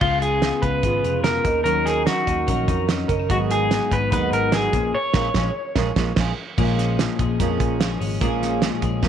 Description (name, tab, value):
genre	jangly indie pop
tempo	146 BPM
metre	4/4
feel	straight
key	unclear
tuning	A4 = 440 Hz
part	electric guitar through a small old amp	melody	0.0-6.1 s	F4 to Db5	-22 LUFS	left 1 dB	none
part	fingerpicked twelve-string acoustic guitar	accompaniment	0.0-9.1 s	Ab2 to Bb4	-26 LUFS	right 8 dB	none
part	twelve-string electric guitar	arpeggios	0.0-9.1 s	Ab2 to Bb4	-27 LUFS	left 12 dB	none
part	vintage muted picked electric bass	bass	0.0-9.1 s	F1 to F2	-26 LUFS	left 2 dB	none
part	cloth-damped thuddy drum kit	drums	0.0-9.1 s	crash cymbal, hi-hat, kick drum, snare drum	-24 LUFS	right 2 dB	none
room	moderate spring reverb, RT60 2.3 s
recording	1960s-style stereo with parts hard left and right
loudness	-18 LUFS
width	side -9 dB against mid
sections	0.0-6.6 A section; 6.6-9.1 B section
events	band accent 4.9-6.6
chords	0.0 Db7; 1.5 Ebm7; 3.3 Abm7; 4.7 Bbm7